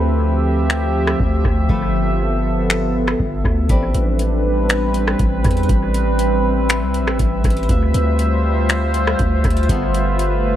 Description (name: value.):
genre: hip hop, atmospheric cloud-rap.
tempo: 120 BPM.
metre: 4/4.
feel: half-time.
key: A minor.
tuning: A4 = 441 Hz.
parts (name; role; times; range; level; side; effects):
warbly tape-like pad; sustained chords; 0.0-10.6 s; F3 to E5; -20 LUFS; equal; chorus, built-in reverb, sidechain pumping.
long sustained 808-style bass; bass; 0.0-10.6 s; G1 to E2; -18 LUFS; equal; none.
flamenco guitar; texture; 0.0-10.6 s; G3 to E5; -31 LUFS; equal; none.
booming analog drum machine; drums; 0.7-10.3 s; finger snaps, hi-hat, kick drum, rim click; -19 LUFS; equal; analog delay.
room: little or no reverb.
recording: echo-heavy mix.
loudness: -15 LUFS.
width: side -11 dB against mid.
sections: 0.0-10.6 A section.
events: break 0.0-3.7.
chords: 0.0 Dm11; 1.7 G13; 3.7 Am11; 7.7 Dm11; 9.7 G13.